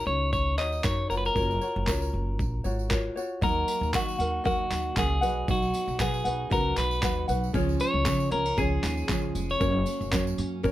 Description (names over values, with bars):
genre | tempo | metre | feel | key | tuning
acoustic pop | 116 BPM | 4/4 | swing 55% on 16ths | Eb minor | A4 = 439 Hz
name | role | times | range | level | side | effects
clean electric guitar | melody | 0.0-10.2 s | Gb4 to Eb5 | -29 LUFS | left 1 dB | none
ukulele | accompaniment | 0.0-10.7 s | Db4 to Gb5 | -31 LUFS | left 1 dB | none
upright bass | bass | 0.0-10.7 s | F1 to Eb3 | -30 LUFS | equal | none
dusty soul sampler-style drum kit | drums | 0.3-10.7 s | handclaps, kick drum, tambourine | -31 LUFS | equal | overdrive
tambourine | percussion | 0.3-10.7 s | none | -45 LUFS | right 7 dB | none
picked steel-string acoustic guitar | arpeggios | 3.4-10.7 s | F3 to Eb4 | -36 LUFS | right 6 dB | none
room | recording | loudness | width
moderate small room reverb, RT60 0.6 s | none | -24 LUFS | side -14 dB against mid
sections
0.0-3.4 A section; 3.4-10.7 B section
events
none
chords
0.0 Ebm7; 1.1 Gbmaj7; 3.4 Ebm; 5.2 B; 7.5 Db; 9.6 Gb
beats
0.33 0.84 | 1.36 1.88 2.39 2.91 | 3.42 3.94 4.45 4.97 | 5.48 6.00 6.51 7.03 | 7.54 8.06 8.57 9.09 | 9.61 10.12 10.64